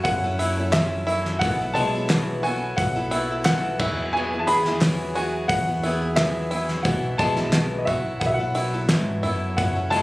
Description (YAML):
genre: indie folk with a building arrangement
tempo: 88 BPM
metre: 4/4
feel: straight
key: unclear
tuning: A4 = 440 Hz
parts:
  - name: warm upright piano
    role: melody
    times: 0.0-10.0 s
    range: D#5 to B5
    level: -25 LUFS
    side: equal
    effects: none
  - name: picked acoustic archtop guitar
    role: accompaniment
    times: 0.0-10.0 s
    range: B2 to A4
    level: -28 LUFS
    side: left 2 dB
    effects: none
  - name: pedal harmonium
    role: sustained chords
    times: 0.0-10.0 s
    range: E3 to C#5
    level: -36 LUFS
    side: right 1 dB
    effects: none
  - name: bluegrass banjo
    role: arpeggios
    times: 0.0-10.0 s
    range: G#3 to G#4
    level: -30 LUFS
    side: right 2 dB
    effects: digital delay
  - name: upright bass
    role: bass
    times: 0.0-10.0 s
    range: F#1 to G#2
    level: -28 LUFS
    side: equal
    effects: none
  - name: loose indie drum kit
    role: drums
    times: 0.0-10.0 s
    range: crash cymbal, hi-hat, kick drum, snare drum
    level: -26 LUFS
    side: equal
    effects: none
  - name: group handclap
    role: percussion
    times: 0.7-9.1 s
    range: none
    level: -31 LUFS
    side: equal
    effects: none
room: light reverb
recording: recorded on a phone in the room, club reverb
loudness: -20 LUFS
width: side -19 dB against mid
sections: 0.0-10.0 A section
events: none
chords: 0.0 F#m7; 1.4 B7sus4; 3.8 Eadd9; 6.9 B7sus4